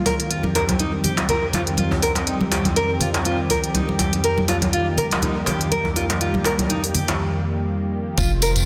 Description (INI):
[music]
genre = afro house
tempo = 122 BPM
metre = 4/4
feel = swing 55% on 16ths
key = unclear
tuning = A4 = 440 Hz
[part]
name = warm analog pad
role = sustained chords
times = 0.0-8.7 s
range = F2 to G4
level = -26 LUFS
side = equal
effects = chorus, sidechain pumping
[part]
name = nylon-string guitar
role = arpeggios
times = 0.1-8.5 s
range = Eb4 to Bb4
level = -26 LUFS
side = equal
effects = sidechain pumping, low-pass filter, digital delay
[part]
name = afro-pop drum kit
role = drums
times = 0.1-8.6 s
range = hi-hat, toms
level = -27 LUFS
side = equal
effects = none
[part]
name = congas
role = percussion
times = 0.1-7.1 s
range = none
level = -28 LUFS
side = equal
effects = none
[part]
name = djembe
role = percussion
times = 0.1-7.2 s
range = none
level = -29 LUFS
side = equal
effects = none
[part]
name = round analog bass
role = bass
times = 8.2-8.7 s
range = F1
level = -22 LUFS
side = equal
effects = sidechain pumping
[part]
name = electronic kick drum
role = drums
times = 8.2-8.3 s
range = none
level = -24 LUFS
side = equal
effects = none
[part]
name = tambourine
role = percussion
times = 8.2-8.6 s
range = none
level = -28 LUFS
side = equal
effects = none
[sound]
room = wet lush hall reverb, RT60 1.8 s, studio reverb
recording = dense, heavily limited modern master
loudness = -21 LUFS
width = mono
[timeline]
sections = 0.0-8.2 A section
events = break 7.2-8.2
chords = 0.3 Cm/F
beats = | 0.31 0.80 1.29 1.78 | 2.27 2.77 3.26 3.75 | 4.24 4.73 5.23 5.72 | 6.21 6.70 7.19 7.68 | 8.18